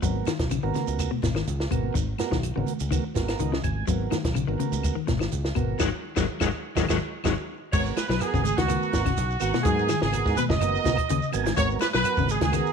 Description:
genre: afrobeat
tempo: 125 BPM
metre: 4/4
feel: straight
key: G# minor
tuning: A4 = 441 Hz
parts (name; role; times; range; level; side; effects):
- mellow tonewheel organ; accompaniment; 0.0-12.7 s; B3 to G#5; -33 LUFS; right 13 dB; slow rotary speaker
- electric guitar at the edge of break-up; arpeggios; 0.0-12.7 s; B2 to G#3; -29 LUFS; left 11 dB; analog chorus
- fingered electric bass; bass; 0.0-12.6 s; F#1 to G#2; -29 LUFS; equal; none
- compact cocktail drum kit; drums; 0.0-12.6 s; crash cymbal, hi-hat, kick drum, snare drum; -29 LUFS; equal; none
- shekere; percussion; 0.0-12.7 s; none; -38 LUFS; right 8 dB; none
- congas; percussion; 0.1-12.7 s; none; -36 LUFS; right 14 dB; none
- claves; percussion; 0.3-12.7 s; none; -42 LUFS; left 14 dB; none
- clear horn section; melody; 7.7-12.7 s; F#4 to D#5; -28 LUFS; left 1 dB; none
- bright trumpet; second line; 7.8-12.7 s; F#4 to D#5; -30 LUFS; right 11 dB; none
room: light reverb, studio reverb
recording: 1960s-style stereo with parts hard left and right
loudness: -23 LUFS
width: side -6 dB against mid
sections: 0.0-7.7 A section; 7.7-12.7 B section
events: tonewheel organ fill 3.2-3.9, 6.8-7.7, 10.8-11.6; band accent 5.8-7.7; drum fill 7.0-7.7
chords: 0.0 G#m9; 7.7 G#m7

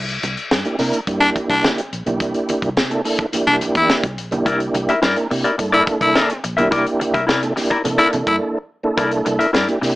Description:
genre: funk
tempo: 106 BPM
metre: 4/4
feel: straight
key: C mixolydian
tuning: A4 = 438 Hz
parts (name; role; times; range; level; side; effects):
- vintage muted fingered electric bass; bass; 0.0-9.9 s; Bb1 to C3; -27 LUFS; equal; none
- tight funk drum kit; drums; 0.1-10.0 s; hi-hat, kick drum, snare drum; -22 LUFS; left 1 dB; none
- congas; percussion; 0.2-9.7 s; none; -29 LUFS; right 2 dB; none
- tonewheel organ; stabs; 0.7-10.0 s; Bb3 to Bb4; -20 LUFS; right 2 dB; overdrive, chorus vibrato, fast rotary speaker
- growling baritone saxophone; second line; 1.2-8.4 s; D4 to E4; -15 LUFS; left 1 dB; none
- semi-hollow electric guitar; accompaniment; 4.5-9.9 s; E4 to E5; -18 LUFS; left 2 dB; harmonic tremolo
room: light reverb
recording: small speaker sound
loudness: -16 LUFS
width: side -18 dB against mid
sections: 0.0-10.0 A section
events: break 0.0-4.5, 8.4-9.0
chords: 0.0 C9

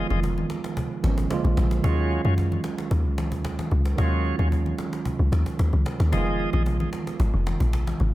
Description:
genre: amapiano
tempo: 112 BPM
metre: 4/4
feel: straight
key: Eb minor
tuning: A4 = 438 Hz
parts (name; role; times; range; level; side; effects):
- tine electric piano; accompaniment; 0.0-8.1 s; D3 to F4; -28 LUFS; right 5 dB; none
- bright tonewheel organ; stabs; 0.0-6.6 s; F4 to Eb5; -32 LUFS; left 1 dB; overdrive, slow rotary speaker, tape echo
- deep log drum bass; bass; 0.0-8.1 s; F1 to Gb2; -22 LUFS; equal; none
- downlifter; sound effects; 0.0-1.8 s; none; barely audible; none; none
- cajon; drums; 0.1-8.1 s; none; -35 LUFS; equal; none
- congas; percussion; 0.1-8.1 s; none; -34 LUFS; left 3 dB; none
room: studio reverb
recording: none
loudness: -22 LUFS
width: side -16 dB against mid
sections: 0.0-8.1 A section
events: none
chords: 0.0 Fm7b5; 1.3 Bb7; 1.8 Ebm11; 6.1 Fm7b5

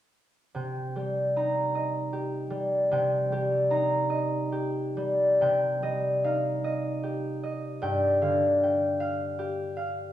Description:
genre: classical, solo harp piece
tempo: 74 BPM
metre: 3/4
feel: uneven beats, rubato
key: C minor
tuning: A4 = 439 Hz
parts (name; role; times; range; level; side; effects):
- concert harp; solo; 0.5-10.1 s; G2 to Bb5; -25 LUFS; equal; none
room: wet recital hall reverb, RT60 1.4 s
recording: recorded in a church or concert hall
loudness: -25 LUFS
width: side -12 dB against mid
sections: 0.5-5.4 A section; 5.4-10.1 B section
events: none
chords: 0.5 Cm7; 5.4 Cm; 7.8 G5

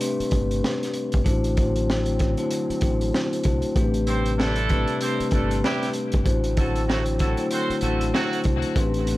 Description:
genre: hip hop, boom-bap hip-hop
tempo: 96 BPM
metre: 4/4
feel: swing 59% on 16ths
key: unclear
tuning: A4 = 440 Hz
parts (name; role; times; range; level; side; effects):
- vibraphone with soft mallets; accompaniment; 0.0-9.2 s; A3 to C5; -25 LUFS; left 2 dB; cassette tape, high-pass filter, low-pass filter
- dark analog pad; sustained chords; 0.0-9.2 s; C3 to C4; -34 LUFS; right 2 dB; lush chorus, high-pass filter, low-pass filter
- crunchy breakbeat drum kit; drums; 0.0-9.2 s; hi-hat, kick drum, snare drum; -25 LUFS; equal; none
- deep dub fingered electric bass; bass; 0.2-9.2 s; G1 to C2; -26 LUFS; equal; none
- clear horn section; stabs; 4.1-8.4 s; F#3 to C5; -28 LUFS; right 2 dB; high-pass filter, low-pass filter, ping-pong delay
room: studio reverb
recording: vinyl crackle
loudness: -20 LUFS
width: side -17 dB against mid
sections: 0.0-9.2 A section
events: none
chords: 0.0 Am11; 1.3 D9/A; 3.8 Am11; 6.3 D9/A

